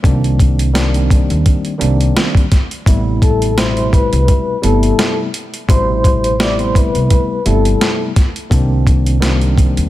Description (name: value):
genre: hip hop, boom-bap hip-hop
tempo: 85 BPM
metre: 4/4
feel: swing 56% on 16ths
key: A minor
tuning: A4 = 435 Hz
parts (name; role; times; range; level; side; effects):
- tine electric piano; accompaniment; 0.0-9.9 s; B2 to E4; -19 LUFS; right 1 dB; medium stereo tremolo, cassette tape, high-pass filter, low-pass filter
- upright bass; bass; 0.0-9.9 s; G1 to Eb2; -16 LUFS; equal; none
- boom bap sampler-style drum kit; drums; 0.0-9.9 s; hi-hat, kick drum, snare drum; -14 LUFS; equal; none
- vibraphone with soft mallets; melody; 3.2-8.0 s; A4 to D6; -18 LUFS; left 4 dB; high-pass filter, low-pass filter
room: light reverb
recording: none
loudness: -11 LUFS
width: side -15 dB against mid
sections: 0.0-9.9 A section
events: none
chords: 0.0 Cm9; 2.9 Am9; 8.5 Cm9